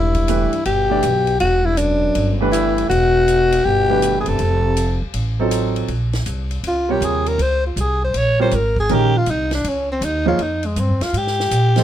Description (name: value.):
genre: modal jazz.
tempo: 160 BPM.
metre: 4/4.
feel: swing 66% on 8ths.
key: Bb dorian from 5.9 s.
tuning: A4 = 440 Hz.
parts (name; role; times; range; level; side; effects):
growling alto saxophone; melody; 0.0-11.8 s; Ab3 to Db5; -18 LUFS; left 1 dB; none.
mellow trombone; second line; 0.0-5.0 s; F#2 to B#2; -25 LUFS; left 6 dB; none.
upright bass; bass; 0.0-11.8 s; E1 to Bb2; -20 LUFS; equal; none.
compact cocktail drum kit; drums; 0.1-11.8 s; hi-hat, kick drum, ride cymbal, snare drum; -30 LUFS; left 2 dB; none.
warm concert grand piano; accompaniment; 0.3-11.8 s; C3 to D5; -20 LUFS; right 4 dB; none.
room: little or no reverb.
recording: close, detailed microphones.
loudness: -16 LUFS.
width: side -11 dB against mid.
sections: 0.0-5.9 A section; 5.9-11.8 B section.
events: alto saxophone solo 5.9-11.8.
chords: 0.0 Em9; 4.4 F7b9; 5.9 Bbm9.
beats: 0.28 0.66 1.03 | 1.40 1.78 2.15 2.53 | 2.90 3.28 3.65 4.02 | 4.40 4.77 5.15 5.52 | 5.89 6.27 6.64 7.02 | 7.39 7.77 8.14 8.52 | 8.89 9.27 9.64 10.02 | 10.39 10.77 11.14 11.51.